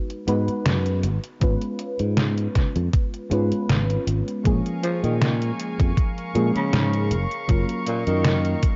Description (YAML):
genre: vaporwave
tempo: 79 BPM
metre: 4/4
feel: swing 53% on 16ths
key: unclear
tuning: A4 = 439 Hz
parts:
  - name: mellow FM electric piano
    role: accompaniment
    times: 0.0-8.8 s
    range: E#3 to B4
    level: -29 LUFS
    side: equal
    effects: analog chorus, analog delay
  - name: detuned 8-bit digital drum machine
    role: drums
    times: 0.1-8.8 s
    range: hi-hat, snare drum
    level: -27 LUFS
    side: equal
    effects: overdrive
  - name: fingered electric bass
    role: bass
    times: 0.3-8.5 s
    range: F#1 to A#2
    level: -26 LUFS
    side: equal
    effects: tube saturation
  - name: electronic kick drum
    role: drums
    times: 1.4-8.8 s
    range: none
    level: -23 LUFS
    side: equal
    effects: overdrive
  - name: rich chamber string section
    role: sustained chords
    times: 4.5-8.8 s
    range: A#4 to C#6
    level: -35 LUFS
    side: equal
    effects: none
  - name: growling tenor saxophone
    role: melody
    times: 4.8-8.6 s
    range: A#2 to E#3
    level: -31 LUFS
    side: equal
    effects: tape echo
room: light reverb, digital ambience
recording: cassette tape, nothing above 7.6 kHz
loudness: -23 LUFS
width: mono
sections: 0.0-8.8 A section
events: none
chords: 0.0 G#m7; 1.0 C#7/G#; 4.5 A#m7; 7.1 F#maj7